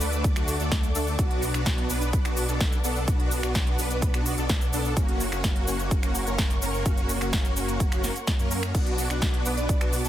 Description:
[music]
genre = EDM, festival progressive house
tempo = 127 BPM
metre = 4/4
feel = straight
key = B minor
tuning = A4 = 440 Hz
[part]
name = dark symphonic string section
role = sustained chords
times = 0.0-10.1 s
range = A4 to D6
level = -37 LUFS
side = equal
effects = sidechain pumping
[part]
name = supersaw chords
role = riff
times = 0.0-10.1 s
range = A3 to B4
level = -30 LUFS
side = equal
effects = ensemble chorus, sidechain pumping, tape echo
[part]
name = wide detuned saw bass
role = bass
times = 0.0-10.1 s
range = F#1 to F#2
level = -30 LUFS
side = equal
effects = chorus, sidechain pumping
[part]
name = big-room dance drum kit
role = drums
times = 0.0-10.1 s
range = cabasa, crash cymbal, finger snaps, hi-hat, snare drum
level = -31 LUFS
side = equal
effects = none
[part]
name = electronic kick drum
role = drums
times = 0.2-9.8 s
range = none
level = -25 LUFS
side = equal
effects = overdrive
[part]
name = marimba with medium mallets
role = melody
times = 9.6-9.9 s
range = B4 to D5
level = -33 LUFS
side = right 4 dB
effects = none
[sound]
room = little or no reverb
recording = dense, heavily limited modern master, faint mains hum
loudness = -23 LUFS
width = side -12 dB against mid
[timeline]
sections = 0.0-10.1 A section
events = none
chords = 0.0 D; 1.2 Bm; 5.0 F#; 8.7 Bm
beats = 0.24 0.72 | 1.19 1.66 2.13 2.60 | 3.08 3.55 4.02 4.50 | 4.97 5.44 5.91 6.38 | 6.86 7.33 7.80 8.28 | 8.75 9.22 9.69

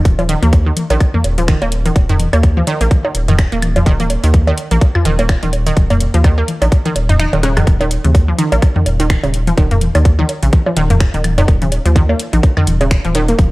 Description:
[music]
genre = minimal techno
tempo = 126 BPM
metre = 4/4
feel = swing 57% on 16ths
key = unclear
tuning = A4 = 435 Hz
[part]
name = round analog bass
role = bass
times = 0.1-13.5 s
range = Eb1 to Eb2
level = -15 LUFS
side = equal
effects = sidechain pumping
[part]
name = electronic kick drum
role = drums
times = 0.1-13.5 s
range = none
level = -11 LUFS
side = equal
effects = studio reverb
[part]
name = garage drum kit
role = drums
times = 0.1-13.5 s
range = finger snaps, hi-hat, rim click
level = -25 LUFS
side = left 1 dB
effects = studio reverb
[part]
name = electronic toms, bongos and woodblock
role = percussion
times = 0.1-13.5 s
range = none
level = -18 LUFS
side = equal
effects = studio reverb
[part]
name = resonant blip pluck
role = riff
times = 0.2-13.3 s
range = Db3 to Eb4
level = -19 LUFS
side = right 1 dB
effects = chorus, sidechain pumping, analog delay
[sound]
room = digital ambience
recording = dry, gritty hardware recording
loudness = -11 LUFS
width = side -20 dB against mid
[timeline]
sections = 0.0-13.5 A section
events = kick drops out 7.2-7.7; drum fill 7.3-7.7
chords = none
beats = | 0.05 0.53 1.00 1.48 | 1.96 2.43 2.91 3.39 | 3.86 4.34 4.81 5.29 | 5.77 6.24 6.72 7.20 | 7.67 8.15 8.62 9.10 | 9.58 10.05 10.53 11.01 | 11.48 11.96 12.43 12.91 | 13.39

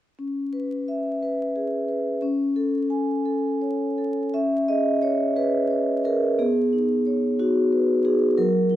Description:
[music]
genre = classical, contemporary piece for solo vibraphone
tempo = 59 BPM (dotted quarters)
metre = 6/8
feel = rubato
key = C# minor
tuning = A4 = 441 Hz
[part]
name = vibraphone with soft mallets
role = solo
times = 0.2-8.8 s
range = F#3 to G#5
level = -21 LUFS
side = equal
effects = none
[sound]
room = moderate recital hall reverb, RT60 1.5 s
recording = close, detailed microphones, vinyl crackle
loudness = -21 LUFS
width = side -13 dB against mid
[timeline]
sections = 0.2-4.3 A section; 4.3-8.8 B section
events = none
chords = 0.2 C#m7; 2.2 Amaj7/C#; 4.3 C#sus2; 6.4 B69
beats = | 0.17 1.20 | 2.21 3.25 | 4.35 5.37 | 6.39 7.39 | 8.38

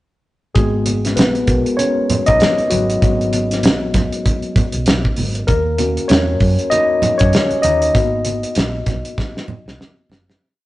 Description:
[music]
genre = lush 1970s-style soul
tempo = 97 BPM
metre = 4/4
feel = swing 58% on 16ths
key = G# minor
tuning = A4 = 440 Hz
[part]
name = tine electric piano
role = accompaniment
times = 0.5-10.4 s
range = F#3 to D#5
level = -17 LUFS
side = left 1 dB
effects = medium stereo tremolo
[part]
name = hollow-body short-scale fingered electric bass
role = bass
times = 0.6-10.3 s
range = F#1 to F#2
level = -22 LUFS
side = equal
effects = none
[part]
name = cloth-damped thuddy drum kit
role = drums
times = 0.6-10.4 s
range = hi-hat, kick drum, snare drum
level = -17 LUFS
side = equal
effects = none
[part]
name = congas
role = percussion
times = 0.6-10.3 s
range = none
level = -25 LUFS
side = right 3 dB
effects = none
[sound]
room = light reverb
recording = rough rehearsal-room recording, tube saturation, nothing above 10.3 kHz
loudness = -14 LUFS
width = side -17 dB against mid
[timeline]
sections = 0.6-10.4 A section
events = tine electric piano solo 0.6-10.4; fade-out 8.0-10.4; drum fill 9.2-10.4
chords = 0.6 G#m7; 5.5 D#m7; 8.0 G#m7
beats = | 0.56 1.18 1.79 2.41 | 3.02 3.64 4.26 4.87 | 5.49 6.11 6.72 7.33 | 7.95 8.56 9.18 9.79

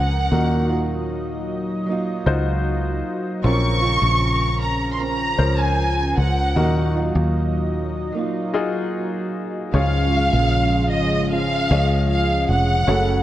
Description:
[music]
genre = pop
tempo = 76 BPM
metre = 4/4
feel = straight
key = Db major from 9.7 s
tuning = A4 = 440 Hz
[part]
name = rich studio violin section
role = melody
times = 0.0-13.2 s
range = Eb5 to Db6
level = -22 LUFS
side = equal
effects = none
[part]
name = clear grand piano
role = accompaniment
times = 0.0-13.2 s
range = Ab2 to Eb5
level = -27 LUFS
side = left 4 dB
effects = none
[part]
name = lush unison pad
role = sustained chords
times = 0.0-13.2 s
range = Db3 to Bb5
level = -27 LUFS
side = equal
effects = chorus
[part]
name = fingerpicked acoustic archtop guitar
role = arpeggios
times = 0.0-13.2 s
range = Gb2 to Gb4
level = -28 LUFS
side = right 5 dB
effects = ping-pong delay
[part]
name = fingered electric bass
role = bass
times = 0.0-13.2 s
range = F1 to Eb2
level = -21 LUFS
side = equal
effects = none
[sound]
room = light reverb, small room ambience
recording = worn, warbling old tape, cassette tape, warbly pitch drift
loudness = -18 LUFS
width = side -13 dB against mid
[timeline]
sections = 0.0-9.7 A section; 9.7-13.2 B section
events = break 8.1-9.7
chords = 0.3 Ebmadd9; 3.4 Bbmadd9; 6.6 Ebmadd9; 9.7 Db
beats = | 0.32 1.10 1.88 2.66 | 3.44 4.22 5.00 5.78 | 6.57 7.36 8.15 8.95 | 9.74 10.53 11.31 12.10 | 12.88

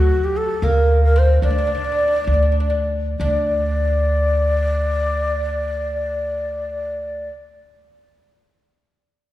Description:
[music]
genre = persian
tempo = 62-78 BPM (dotted quarters)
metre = 6/8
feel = straight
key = D dastgah homayun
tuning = A4 = 441 Hz
[part]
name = breathy mellow ney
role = melody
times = 0.0-7.3 s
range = F#4 to D5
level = -21 LUFS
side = left 1 dB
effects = none
[part]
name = oud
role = second line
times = 0.0-7.3 s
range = F#3 to D4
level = -24 LUFS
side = equal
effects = none
[part]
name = upright bass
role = bass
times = 0.0-7.3 s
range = D2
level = -19 LUFS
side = equal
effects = none
[sound]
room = wet scoring stage reverb, RT60 2.0 s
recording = heard from further back in the room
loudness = -17 LUFS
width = side -14 dB against mid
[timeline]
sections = 0.0-3.2 A section; 3.2-7.0 B section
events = slowing down 0.0-3.2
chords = none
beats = 0.62 | 1.43 2.27 | 3.19 4.15 | 5.11 6.07

